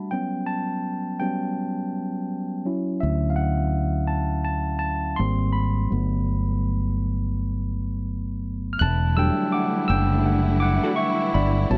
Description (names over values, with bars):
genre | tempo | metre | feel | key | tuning
R&B | 83 BPM | 4/4 | swing 58% on 16ths | E dorian | A4 = 440 Hz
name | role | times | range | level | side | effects
barky tine electric piano | accompaniment | 0.0-11.8 s | F#3 to F#6 | -28 LUFS | equal | overdrive
fretless electric bass | bass | 3.0-11.8 s | E1 to D2 | -26 LUFS | equal | none
warm studio string section | sustained chords | 8.8-11.8 s | C#3 to E4 | -32 LUFS | equal | none
vintage hollow-body jazz guitar | second line | 10.8-10.9 s | G3 to A4 | -29 LUFS | equal | none
room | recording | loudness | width
light reverb | dry, close 1970s-style studio recording | -24 LUFS | mono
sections
0.0-8.8 A section; 8.8-11.8 B section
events
tine electric piano solo 0.0-8.8, 8.8-11.8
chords
0.1 A13; 2.6 Dmaj9; 5.2 G#maj9; 5.9 Gmaj9; 8.8 Em11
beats
| 0.12 0.84 1.57 2.29 | 3.01 3.73 4.46 5.18 | 5.90 6.63 7.35 8.07 | 8.79 9.52 10.24 10.96 | 11.69